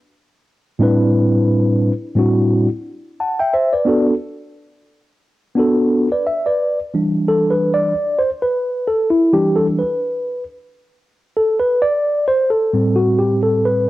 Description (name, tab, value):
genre	hip hop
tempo	88 BPM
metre	4/4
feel	swing 58% on 16ths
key	E minor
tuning	A4 = 440 Hz
part	mellow tine electric piano	solo	0.8-13.9 s	A2 to A5	-14 LUFS	equal	medium stereo tremolo, cassette tape
room	moderate spring reverb, RT60 1.4 s, digital ambience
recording	home recording on cassette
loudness	-14 LUFS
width	side -16 dB against mid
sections	0.0-6.6 A section; 6.6-13.9 B section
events	tine electric piano solo 6.6-13.9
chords	0.0 N.C.; 0.8 Am11; 3.9 Bm7; 6.6 Em7; 11.7 Am7